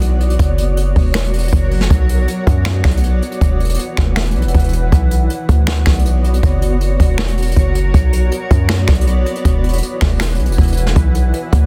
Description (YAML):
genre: hip hop, trap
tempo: 159 BPM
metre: 4/4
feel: half-time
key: B harmonic minor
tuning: A4 = 440 Hz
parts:
  - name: granular cloud pad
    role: sustained chords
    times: 0.0-11.7 s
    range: F#4 to C#5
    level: -25 LUFS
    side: equal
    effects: built-in reverb
  - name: hard-hitting 808-style bass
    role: bass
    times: 0.0-11.7 s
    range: E1 to F#2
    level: -18 LUFS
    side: equal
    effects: none
  - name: jazz brush drum kit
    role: drums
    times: 0.0-11.6 s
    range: finger snaps, hi-hat, kick drum, snare drum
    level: -18 LUFS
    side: equal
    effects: soft clipping on snare
room: small room ambience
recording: dense, heavily limited modern master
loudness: -15 LUFS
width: mono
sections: 0.0-11.0 A section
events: none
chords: 0.4 F#; 1.9 Bmadd9; 3.4 Esus2; 4.9 Bmadd9; 6.4 F#; 7.9 Bmadd9; 9.4 Esus2; 11.0 Bmadd9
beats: 0.02 | 0.39 0.77 1.15 1.53 | 1.90 2.28 2.66 3.04 | 3.41 3.79 4.17 4.54 | 4.92 5.30 5.68 6.05 | 6.43 6.81 7.19 7.56 | 7.94 8.32 8.70 9.07 | 9.45 9.83 10.21 10.58 | 10.96 11.34